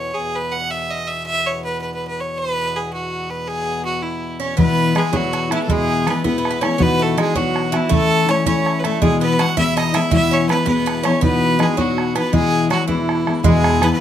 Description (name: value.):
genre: celtic folk, Celtic jig.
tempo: 108 BPM (dotted quarters).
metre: 6/8.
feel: straight.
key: E major.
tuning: A4 = 439 Hz.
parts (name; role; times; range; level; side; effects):
clear fiddle; melody; 0.0-14.0 s; E4 to F#5; -21 LUFS; right 1 dB; none.
hand-pumped harmonium; drone; 0.0-4.6 s; E2 to B2; -30 LUFS; left 2 dB; none.
Irish bouzouki; second line; 4.4-14.0 s; E3 to F#4; -23 LUFS; right 4 dB; none.
fingerpicked steel-string acoustic guitar; accompaniment; 4.6-14.0 s; E2 to F#4; -18 LUFS; left 4 dB; none.
bodhran; percussion; 4.6-13.9 s; none; -23 LUFS; right 4 dB; none.
upright bass; bass; 13.4-13.9 s; E2; -20 LUFS; right 1 dB; none.
room: moderate studio reverb, RT60 0.6 s.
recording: close, detailed microphones.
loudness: -16 LUFS.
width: side -10 dB against mid.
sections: 0.0-4.6 A section; 4.6-13.4 A section.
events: none.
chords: 0.0 E5; 4.6 E; 6.8 B/E; 7.9 A/E; 9.0 E; 11.2 B/E; 12.3 E.